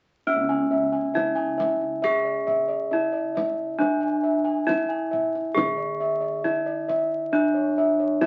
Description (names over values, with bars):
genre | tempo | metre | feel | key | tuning
Javanese gamelan | 68 BPM | 4/4 | straight | unclear | A4 = 443 Hz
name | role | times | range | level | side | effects
gamelan-type bronze metallophone | melody | 0.3-8.3 s | C#4 to G#4-30c | -28 LUFS | equal | none
gamelan-type bossed gongs | arpeggios | 0.3-8.3 s | C#5 to G#5-30c | -27 LUFS | equal | none
gamelan-type bossed gongs | bass | 0.3-8.3 s | C#2 to D4+20c | -37 LUFS | equal | none
kendang | percussion | 1.2-8.3 s | none | -32 LUFS | equal | none
room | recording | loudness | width
wet studio reverb, RT60 0.6 s | very old 78 rpm record, vinyl crackle, nothing above 7.9 kHz | -24 LUFS | mono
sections
0.3-8.3 A section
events
none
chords
none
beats
| 0.27 1.16 2.04 2.92 | 3.80 4.68 5.57 6.45 | 7.33 8.22